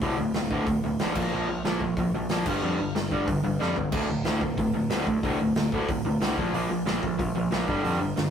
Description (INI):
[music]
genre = punk rock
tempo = 184 BPM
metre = 4/4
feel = straight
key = D minor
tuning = A4 = 441 Hz
[part]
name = distorted electric guitar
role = riff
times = 0.0-8.3 s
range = D2 to Bb3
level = -26 LUFS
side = equal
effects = distortion
[part]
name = growling picked electric bass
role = bass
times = 0.0-8.3 s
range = D1 to F2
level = -32 LUFS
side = equal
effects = overdrive
[part]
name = big rock drum kit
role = drums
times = 0.0-8.2 s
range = crash cymbal, hi-hat, kick drum, snare drum, toms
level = -31 LUFS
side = equal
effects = none
[sound]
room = moderate studio reverb, RT60 0.5 s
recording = rough rehearsal-room recording, tube saturation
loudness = -24 LUFS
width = side -8 dB against mid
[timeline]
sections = 0.0-8.3 A section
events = drum fill 3.6-3.9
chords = 0.0 D5; 1.2 Bb5; 2.5 G5; 3.9 D5; 6.4 Bb5; 7.7 G5